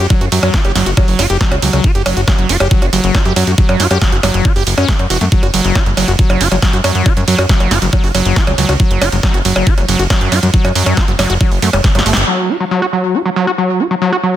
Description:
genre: psychedelic trance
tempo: 138 BPM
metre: 4/4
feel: straight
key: unclear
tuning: A4 = 440 Hz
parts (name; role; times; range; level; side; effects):
- overdriven acid bass; riff; 0.0-14.4 s; F#3 to G4; -16 LUFS; equal; distortion, auto-pan, sidechain pumping, digital delay
- plucky analog bass; bass; 0.0-12.2 s; E1 to F#2; -15 LUFS; equal; none
- electronic kick drum; drums; 0.1-11.9 s; none; -12 LUFS; equal; overdrive
- techno drum kit; drums; 0.1-12.3 s; hi-hat, percussion blips, ride cymbal, snare drum; -17 LUFS; right 2 dB; low-pass filter on hats, low-pass filter on snare, low-pass filter on perc, low-pass filter on cymbals, low-pass filter on room
room: light reverb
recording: dense, heavily limited modern master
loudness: -10 LUFS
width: side -12 dB against mid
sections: 0.0-12.3 A section; 12.3-14.4 B section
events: drop 0.0-12.3; drum fill 11.8-12.3; band accent 12.1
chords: 0.0 F#5

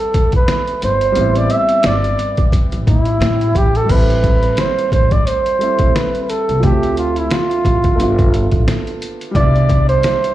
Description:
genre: hip hop, jazz-hop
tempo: 88 BPM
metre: 4/4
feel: swing 57% on 16ths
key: A minor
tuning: A4 = 444 Hz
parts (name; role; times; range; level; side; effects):
- breathy flugelhorn; melody; 0.0-10.3 s; E4 to E5; -17 LUFS; right 2 dB; slapback echo
- warm upright piano; accompaniment; 0.0-10.3 s; B2 to E5; -23 LUFS; equal; slapback echo
- trip hop sampler-style drum kit; drums; 0.1-10.3 s; crash cymbal, hi-hat, kick drum, snare drum; -17 LUFS; equal; none
- upright bass; bass; 0.8-9.9 s; G1 to A2; -17 LUFS; equal; none
room: light reverb, small room ambience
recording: live gig heard through the venue's PA, club reverb, lossy compression artefacts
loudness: -12 LUFS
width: side -14 dB against mid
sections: 0.0-3.9 A section; 3.9-10.3 B section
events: flugelhorn solo 0.0-3.9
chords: 0.0 Am7; 6.6 Dm9; 8.0 G9; 9.3 Cmaj7

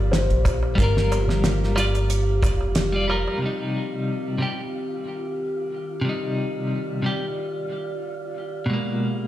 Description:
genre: trip hop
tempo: 91 BPM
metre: 4/4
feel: swing 54% on 16ths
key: C minor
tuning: A4 = 439 Hz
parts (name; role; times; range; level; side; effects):
- felt-muted upright piano; melody; 0.0-2.7 s; Bb4 to C5; -30 LUFS; left 4 dB; tape echo
- warbly tape-like pad; sustained chords; 0.0-9.3 s; Cb3 to D5; -29 LUFS; equal; chorus, built-in reverb
- upright bass; bass; 0.0-3.2 s; F1 to Bb1; -22 LUFS; equal; none
- wind-like tuned noise texture; texture; 0.0-9.3 s; F4; -38 LUFS; left 2 dB; built-in reverb
- damped 70s drum kit; drums; 0.1-2.9 s; hi-hat, kick drum, snare drum; -23 LUFS; equal; none
- darbuka; percussion; 0.1-3.4 s; none; -32 LUFS; right 2 dB; none
- clean electric guitar; accompaniment; 0.8-9.3 s; Cb3 to D5; -26 LUFS; left 1 dB; tremolo, tape echo
room: small room ambience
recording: played on a big sound system in a bare room, large studio reverb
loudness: -22 LUFS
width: side -13 dB against mid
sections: 0.0-3.4 A section; 3.4-9.3 B section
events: none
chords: 0.0 Gm7; 3.4 Cm; 8.7 Abmadd9

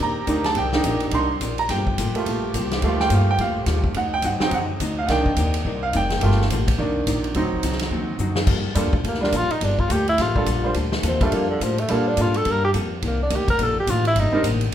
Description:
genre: jazz, big band swing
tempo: 212 BPM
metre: 4/4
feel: swing 61% on 8ths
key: G minor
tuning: A4 = 440 Hz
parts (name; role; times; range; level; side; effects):
- bright upright piano; accompaniment; 0.0-14.4 s; Eb3 to C6; -24 LUFS; right 2 dB; none
- vintage hollow-body jazz guitar; accompaniment; 0.0-14.7 s; C3 to D5; -30 LUFS; left 4 dB; none
- clear saxophone section; sustained chords; 0.0-8.5 s; C3 to G4; -33 LUFS; right 1 dB; none
- upright bass; bass; 0.0-14.7 s; F1 to Bb2; -24 LUFS; equal; none
- swinging big-band drum kit; drums; 0.0-14.7 s; crash cymbal, hi-hat, kick drum, ride cymbal, snare drum; -26 LUFS; equal; none
- warm tenor saxophone; melody; 9.1-14.5 s; D3 to Bb4; -23 LUFS; equal; none
room: moderate large studio reverb, RT60 1.2 s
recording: minimal, uncompressed stereo recording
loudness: -19 LUFS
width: side -10 dB against mid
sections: 0.0-8.5 A section; 8.5-14.7 A section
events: upright piano solo 0.0-8.5; drum fill 8.2; tenor saxophone solo 8.5-14.7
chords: 0.0 Cm9; 1.7 Gm9; 4.0 D7b9; 5.1 Cm9; 6.2 Gm9; 6.8 Cm9; 7.3 D7b9; 8.5 Gm9; 13.0 Cm9

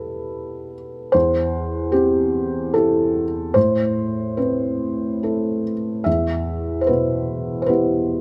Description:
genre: neoclassical minimalist piano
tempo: 73 BPM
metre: 3/4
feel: rubato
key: E minor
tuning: A4 = 440 Hz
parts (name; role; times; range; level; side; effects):
- felt-muted upright piano; solo; 0.0-8.2 s; E2 to E5; -21 LUFS; equal; none
room: light reverb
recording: close, detailed microphones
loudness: -21 LUFS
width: mono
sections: 0.0-8.2 A section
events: none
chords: 0.0 Em; 1.1 C/E; 3.6 Amadd9; 6.1 Em

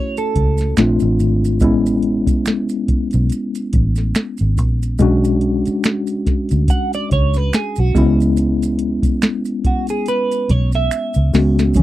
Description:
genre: R&B, neo-soul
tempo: 71 BPM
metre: 4/4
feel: swing 58% on 16ths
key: unclear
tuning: A4 = 440 Hz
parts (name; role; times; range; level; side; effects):
- clean electric guitar; second line; 0.0-0.7, 6.7-11.7 s; F#4 to F#5; -21 LUFS; right 4 dB; wide subtle chorus
- mellow tine electric piano; accompaniment; 0.0-11.8 s; E3 to C#5; -18 LUFS; left 2 dB; medium stereo tremolo
- soft vintage rhythm box; drums; 0.2-11.8 s; hi-hat, kick drum, snare drum; -18 LUFS; equal; none
- maracas and finger snaps; percussion; 0.2-11.8 s; none; -31 LUFS; right 8 dB; none
- vintage muted fingered electric bass; bass; 0.4-11.8 s; G#1 to D2; -17 LUFS; equal; none
room: little or no reverb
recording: dry, close 1970s-style studio recording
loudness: -14 LUFS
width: side -15 dB against mid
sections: 0.0-11.8 A section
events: drum fill 10.9-11.8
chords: 0.0 Dmaj9 (rootless); 0.8 A#maj9; 1.6 Amaj9; 5.0 Bm69; 8.0 C#m7

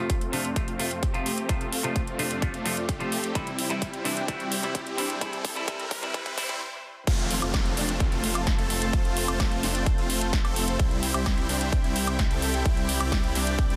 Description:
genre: EDM, festival progressive house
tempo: 129 BPM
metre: 4/4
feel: straight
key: F major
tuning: A4 = 441 Hz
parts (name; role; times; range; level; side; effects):
- semi-hollow electric guitar; accompaniment; 0.0-6.5 s; C3 to F4; -35 LUFS; equal; phaser, sidechain pumping, tape echo
- lush unison pad; sustained chords; 0.0-13.8 s; C2 to A5; -38 LUFS; equal; chorus, sidechain pumping
- supersaw chords; riff; 0.0-13.8 s; G3 to A4; -33 LUFS; equal; sidechain pumping, low-pass filter, tape echo
- riser and downlifter; sound effects; 3.0-10.8 s; none; -41 LUFS; equal; none
- big-room dance drum kit; drums; 0.1-13.8 s; crash cymbal, hi-hat, snare drum, woodblock; -33 LUFS; equal; small room ambience
- electronic kick drum; drums; 0.1-13.7 s; none; -28 LUFS; equal; small room ambience
- detuned saw bass; bass; 7.1-13.8 s; F1 to C2; -33 LUFS; equal; chorus, sidechain pumping
room: light reverb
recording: dense, heavily limited modern master, high-pass filter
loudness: -27 LUFS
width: mono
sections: 0.0-7.1 A section; 7.1-13.8 B section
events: build-up 0.0-7.1; filter sweep on supersaw synth 0.0-7.1; filter sweep on analog synth pad 0.0-7.1; filter sweep 0.0-7.1; drum fill 3.4-6.6; stop 6.6-7.1; drop 7.1-13.8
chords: 0.0 F; 3.4 C; 7.1 F; 10.8 C

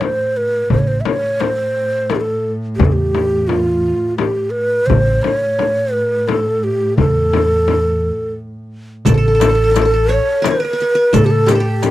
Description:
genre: Arabic maqam ensemble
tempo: 86 BPM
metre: 3/4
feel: straight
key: A maqam saba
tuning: A4 = 440 Hz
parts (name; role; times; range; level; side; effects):
- breathy mellow ney; melody; 0.0-11.9 s; F4 to E5; -16 LUFS; right 1 dB; none
- warm double bass; drone; 0.0-9.1 s; A2; -25 LUFS; right 1 dB; stereo widening
- darbuka; percussion; 0.0-11.9 s; none; -21 LUFS; right 3 dB; none
- frame drum; percussion; 0.0-11.9 s; none; -19 LUFS; left 8 dB; none
- upright bass; bass; 0.7-11.9 s; A1 to A2; -17 LUFS; equal; none
- mellow wooden-headed alto flute; second line; 9.1-11.9 s; G4 to B4-44c; -24 LUFS; left 4 dB; none
- qanun; second line; 9.1-11.9 s; G4 to C#5; -24 LUFS; right 3 dB; none
- riq; percussion; 9.1-11.9 s; none; -25 LUFS; right 9 dB; none
room: little or no reverb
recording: dry, close 1970s-style studio recording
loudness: -13 LUFS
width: side -14 dB against mid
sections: 0.0-9.1 A section; 9.1-11.9 B section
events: break 8.4-9.1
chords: none

